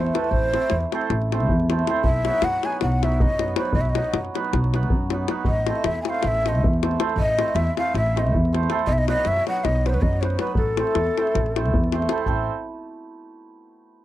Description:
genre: balkan folk, Balkan wedding band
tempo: 316 BPM (eighths)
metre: 9/8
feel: straight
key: unclear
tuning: A4 = 439 Hz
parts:
  - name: breathy bright ney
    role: melody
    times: 0.0-11.9 s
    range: A4 to G#5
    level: -24 LUFS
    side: left 1 dB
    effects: none
  - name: hammered dulcimer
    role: accompaniment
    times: 0.0-12.5 s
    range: F#3 to C5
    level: -27 LUFS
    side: right 4 dB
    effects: none
  - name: upright bass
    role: bass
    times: 0.0-12.5 s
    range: A1 to F#2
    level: -24 LUFS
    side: equal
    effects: none
  - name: davul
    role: percussion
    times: 0.1-12.5 s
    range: none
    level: -25 LUFS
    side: left 2 dB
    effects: none
room: little or no reverb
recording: dry, close 1970s-style studio recording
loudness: -19 LUFS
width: side -14 dB against mid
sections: 0.0-12.3 A section; 12.3-14.0 B section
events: none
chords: 0.0 Am; 2.0 B; 5.5 Am; 8.9 B; 10.6 Am

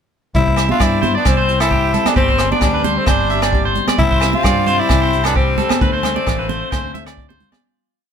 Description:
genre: highlife guitar band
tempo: 132 BPM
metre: 4/4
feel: swing 54% on 16ths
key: C major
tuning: A4 = 441 Hz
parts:
  - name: raspy tenor saxophone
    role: melody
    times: 0.3-7.1 s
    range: C4 to F4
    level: -19 LUFS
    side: left 1 dB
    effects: none
  - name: jazz brush drum kit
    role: drums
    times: 0.3-7.6 s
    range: hi-hat, kick drum, rim click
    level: -19 LUFS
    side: equal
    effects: none
  - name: clear trumpet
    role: second line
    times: 0.4-7.1 s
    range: G3 to D4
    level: -28 LUFS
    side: left 4 dB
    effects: none
  - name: picked steel-string acoustic guitar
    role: accompaniment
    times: 0.4-8.1 s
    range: G2 to A4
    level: -27 LUFS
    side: left 5 dB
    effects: none
  - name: fingered electric bass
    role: bass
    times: 0.4-7.4 s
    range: G1 to G2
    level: -20 LUFS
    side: equal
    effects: none
  - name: electric guitar at the edge of break-up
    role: arpeggios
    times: 0.5-7.6 s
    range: G4 to E5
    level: -21 LUFS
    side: right 2 dB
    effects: spring reverb
  - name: agogo bells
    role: percussion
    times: 0.6-7.6 s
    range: none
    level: -27 LUFS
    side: right 5 dB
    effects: none
  - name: congas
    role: percussion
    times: 0.7-7.6 s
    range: none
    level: -23 LUFS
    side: right 2 dB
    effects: none
room: light reverb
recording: band playing live in one room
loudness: -13 LUFS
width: side -7 dB against mid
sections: 0.4-7.6 A section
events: fade-out 5.8-7.6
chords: 0.4 C; 2.2 Gsus4; 4.0 C; 5.8 Dm7

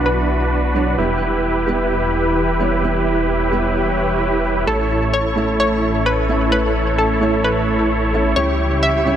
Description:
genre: EDM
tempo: 130 BPM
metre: 4/4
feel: straight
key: unclear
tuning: A4 = 440 Hz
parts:
  - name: hollow square pluck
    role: melody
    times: 0.0-0.7, 4.7-9.2 s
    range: A4 to E5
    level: -21 LUFS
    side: left 2 dB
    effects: chorus, tape echo
  - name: felt-muted upright piano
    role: accompaniment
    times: 0.0-9.2 s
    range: A2 to E5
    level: -23 LUFS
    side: right 3 dB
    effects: tape echo
  - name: lush unison pad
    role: sustained chords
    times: 0.0-9.2 s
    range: C#3 to C#5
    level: -25 LUFS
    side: equal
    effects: chorus
  - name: dense compressed supersaw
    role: riff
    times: 0.0-9.2 s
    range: D4 to C#5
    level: -19 LUFS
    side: right 1 dB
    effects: low-pass filter, tape echo
  - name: detuned saw bass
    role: bass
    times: 0.0-9.2 s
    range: E1 to C#2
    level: -22 LUFS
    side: equal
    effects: tube saturation
room: moderate lush hall reverb, RT60 2.4 s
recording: none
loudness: -15 LUFS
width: side -9 dB against mid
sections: 0.0-9.2 A section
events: none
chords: 0.0 Bm; 1.0 Em; 4.7 A; 8.4 C#dim

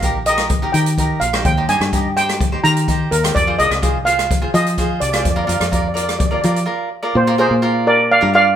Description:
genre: calypso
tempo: 126 BPM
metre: 4/4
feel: straight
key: unclear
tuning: A4 = 440 Hz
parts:
  - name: steel pan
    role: melody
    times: 0.0-8.6 s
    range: F4 to Bb5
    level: -17 LUFS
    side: right 1 dB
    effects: none
  - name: cavaquinho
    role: accompaniment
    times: 0.0-8.5 s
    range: Eb4 to F5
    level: -22 LUFS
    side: right 1 dB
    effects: none
  - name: fingered electric bass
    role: bass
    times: 0.0-8.6 s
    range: Bb1 to F3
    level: -20 LUFS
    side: left 1 dB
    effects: none
  - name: open jazz drum kit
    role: drums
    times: 0.0-6.7 s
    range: hi-hat, kick drum, rim click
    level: -20 LUFS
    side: equal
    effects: none
room: moderate studio reverb, RT60 0.8 s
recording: band playing live in one room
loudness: -14 LUFS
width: side -9 dB against mid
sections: 0.0-7.2 A section; 7.2-8.6 B section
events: break 6.7-7.2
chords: 0.0 Eb; 1.5 Cm7/Eb; 3.4 Fm; 5.3 Bb/F; 7.2 Bbadd9

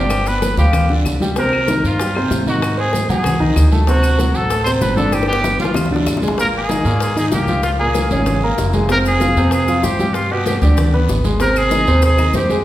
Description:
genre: latin, salsa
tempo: 191 BPM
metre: 4/4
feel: straight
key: unclear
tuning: A4 = 440 Hz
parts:
  - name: clear trumpet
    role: melody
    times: 0.0-12.6 s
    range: F4 to C5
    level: -20 LUFS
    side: equal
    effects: none
  - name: bright concert grand piano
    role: accompaniment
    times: 0.0-12.6 s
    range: Bb2 to C6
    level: -19 LUFS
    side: equal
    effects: none
  - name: upright bass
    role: bass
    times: 0.0-12.6 s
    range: F1 to Ab2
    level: -18 LUFS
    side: equal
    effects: none
  - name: bongos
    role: percussion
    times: 0.1-12.6 s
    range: none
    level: -26 LUFS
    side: left 3 dB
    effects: none
  - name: claves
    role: percussion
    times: 0.1-6.2, 11.6-12.3 s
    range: none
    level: -34 LUFS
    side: left 3 dB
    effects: none
  - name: congas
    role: percussion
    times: 0.1-12.6 s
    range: none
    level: -23 LUFS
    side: left 1 dB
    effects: none
  - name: guiro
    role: percussion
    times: 0.1-12.6 s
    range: none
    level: -33 LUFS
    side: right 5 dB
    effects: none
  - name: maracas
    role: percussion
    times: 0.1-12.6 s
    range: none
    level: -34 LUFS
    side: left 4 dB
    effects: none
room: wet recital hall reverb, RT60 1.4 s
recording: recorded in a church or concert hall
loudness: -13 LUFS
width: side -14 dB against mid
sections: 0.0-6.4 A section; 6.4-12.6 B section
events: drum fill 5.1-6.4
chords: 0.1 G7; 1.4 Cm7; 2.6 Ab7; 3.9 D7; 5.1 G7; 6.4 Absus2; 7.6 Db6; 8.9 Fm; 10.2 G; 11.4 Ab

